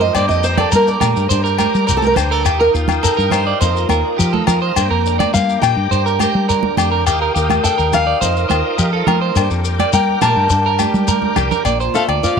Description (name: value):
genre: highlife guitar band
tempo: 104 BPM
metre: 4/4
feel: straight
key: unclear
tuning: A4 = 440 Hz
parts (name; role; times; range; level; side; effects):
- fingerpicked steel-string acoustic guitar; melody; 0.0-12.4 s; F4 to A5; -18 LUFS; left 2 dB; none
- picked old ladder-braced acoustic guitar; accompaniment; 0.0-12.4 s; F2 to Bb4; -26 LUFS; left 11 dB; none
- bright tonewheel organ; sustained chords; 0.0-11.6 s; Bb4 to Eb6; -26 LUFS; equal; chorus vibrato, slow rotary speaker
- electric guitar at the edge of break-up; arpeggios; 0.0-12.4 s; F4 to D5; -19 LUFS; right 10 dB; tape echo
- fingered electric bass; bass; 0.0-12.4 s; Bb1 to G3; -19 LUFS; left 1 dB; none
- agogo bells; percussion; 0.1-12.2 s; none; -22 LUFS; left 14 dB; none
- shekere; percussion; 0.2-12.4 s; none; -22 LUFS; left 4 dB; none
- congas; percussion; 0.6-12.4 s; none; -23 LUFS; right 8 dB; none
- raspy tenor saxophone; second line; 11.9-12.4 s; F3 to A3; -22 LUFS; left 11 dB; none
room: light reverb, small room ambience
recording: 1960s-style stereo with parts hard left and right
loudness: -13 LUFS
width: side -6 dB against mid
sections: 0.0-11.7 A section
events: steel-string acoustic guitar solo 0.0-11.7; drum fill 10.9-11.7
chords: 0.1 Gm; 2.5 Ebadd9; 3.6 F7sus4; 4.8 Gm; 7.1 Ebadd9; 8.2 F7sus4; 9.4 Gm; 11.7 Bb